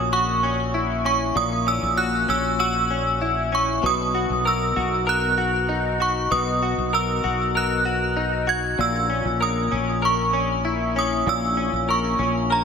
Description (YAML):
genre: dream pop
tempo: 97 BPM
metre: 4/4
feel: straight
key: B major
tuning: A4 = 439 Hz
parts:
  - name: synth chime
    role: melody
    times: 0.0-12.6 s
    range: A#5 to G#6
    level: -22 LUFS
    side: right 2 dB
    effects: ensemble chorus, ping-pong delay
  - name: direct-recorded clean electric guitar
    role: arpeggios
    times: 0.0-12.6 s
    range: A#2 to A#4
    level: -24 LUFS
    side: left 3 dB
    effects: analog chorus, ping-pong delay
  - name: mellow fretless electric bass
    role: bass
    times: 0.0-12.6 s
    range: A#1 to B1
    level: -27 LUFS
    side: equal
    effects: ensemble chorus
room: moderate huge ambient reverb, RT60 7.6 s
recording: none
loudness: -20 LUFS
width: side -6 dB against mid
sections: 0.0-12.6 A section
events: none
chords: 0.0 F#7/A#; 3.8 Bmaj7; 8.8 A#dim